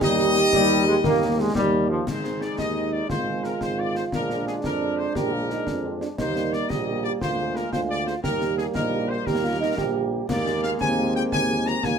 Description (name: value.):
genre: military-style march for wind band.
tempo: 117 BPM (dotted quarters).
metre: 6/8.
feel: straight.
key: Eb major.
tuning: A4 = 441 Hz.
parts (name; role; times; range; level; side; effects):
clear trumpet section; melody; 0.0-12.0 s; Ab4 to Bb5; -28 LUFS; left 2 dB; none.
warm euphonium; second line; 0.0-12.0 s; Bb3 to G4; -28 LUFS; right 6 dB; none.
mellow French horn section; accompaniment; 0.0-11.7 s; G3 to Ab4; -30 LUFS; left 3 dB; none.
warm trombone section; sustained chords; 0.0-12.0 s; F3 to F4; -28 LUFS; left 1 dB; none.
warm tuba; bass; 0.0-12.0 s; Ab1 to F2; -28 LUFS; right 2 dB; none.
concert snare drum, clash cymbals and concert bass drum; drums; 0.0-12.0 s; none; -31 LUFS; left 2 dB; none.
room: light reverb.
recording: minimal, uncompressed stereo recording.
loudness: -21 LUFS.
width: side -6 dB against mid.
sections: 0.0-2.1 A section; 2.1-12.0 A section.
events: none.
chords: 0.0 Eb; 2.1 Ab; 3.1 Fm/Ab; 4.1 Bb7; 6.2 Eb; 7.2 Bb7/D; 8.2 Eb; 10.3 Bb7(no3)/Eb.